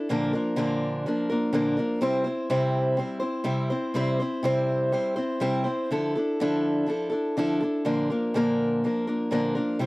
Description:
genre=rock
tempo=123 BPM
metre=4/4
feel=straight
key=unclear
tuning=A4 = 440 Hz
part: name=picked acoustic archtop guitar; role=solo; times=0.0-9.9 s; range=Bb2 to C5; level=-23 LUFS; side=equal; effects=none
room=light reverb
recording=dry, close 1970s-style studio recording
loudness=-23 LUFS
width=side -22 dB against mid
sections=0.0-5.9 A section; 5.9-9.9 B section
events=none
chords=0.1 Bb; 2.0 C; 5.9 Dmadd9; 7.9 Bb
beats=| 0.08 0.57 1.05 1.54 | 2.02 2.51 2.99 3.48 | 3.96 4.45 4.94 5.42 | 5.91 6.40 6.89 7.37 | 7.86 8.35 8.84 9.33 | 9.82

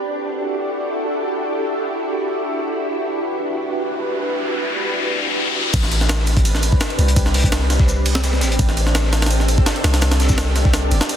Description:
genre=drum and bass, jungle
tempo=168 BPM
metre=4/4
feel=swing 53% on 16ths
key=A dorian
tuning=A4 = 441 Hz
part: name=soft string machine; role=sustained chords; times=0.0-11.2 s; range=C4 to B4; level=-22 LUFS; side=equal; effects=ensemble chorus
part: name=riser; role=sound effects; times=3.6-5.7 s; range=none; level=-23 LUFS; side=left 4 dB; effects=none
part: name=long sustained 808-style bass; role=bass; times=5.7-11.0 s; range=G1 to C2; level=-18 LUFS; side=equal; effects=tube saturation
part: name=crunchy breakbeat drum kit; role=drums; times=5.7-11.2 s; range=hi-hat, shaker, snare drum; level=-28 LUFS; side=left 2 dB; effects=high-pass filter on hats, high-pass filter on snare, high-pass filter on perc, high-pass filter on room
part: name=jungle sampler-style drum kit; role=drums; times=5.7-11.2 s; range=crash cymbal, kick drum, ride cymbal, snare drum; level=-18 LUFS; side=equal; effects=none
room=moderate digital room reverb, RT60 0.9 s, small room ambience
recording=dense, heavily limited modern master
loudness=-16 LUFS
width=side -9 dB against mid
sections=0.0-5.7 A section; 5.7-11.2 B section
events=riser 3.6-5.7; drop 5.7-11.2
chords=0.0 Em11; 5.7 Am11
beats=| 0.02 0.38 0.74 1.09 | 1.45 1.81 2.17 2.52 | 2.88 3.24 3.59 3.95 | 4.31 4.67 5.02 5.38 | 5.74 6.09 6.45 6.81 | 7.17 7.52 7.88 8.24 | 8.59 8.95 9.31 9.67 | 10.02 10.38 10.74 11.09

